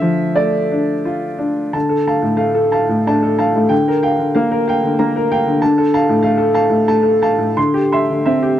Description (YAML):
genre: neoclassical minimalist piano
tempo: 93 BPM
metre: 3/4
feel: uneven beats, rubato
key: D minor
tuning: A4 = 440 Hz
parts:
  - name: clear upright piano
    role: solo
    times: 0.0-8.6 s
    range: A2 to C6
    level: -13 LUFS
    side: equal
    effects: none
room: little or no reverb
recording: dry, close 1970s-style studio recording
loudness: -13 LUFS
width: side -11 dB against mid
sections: 0.0-1.7 A section; 1.7-8.6 B section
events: none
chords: 0.0 Dm; 3.7 Gm7/D; 5.6 Dm; 7.6 Cadd9/D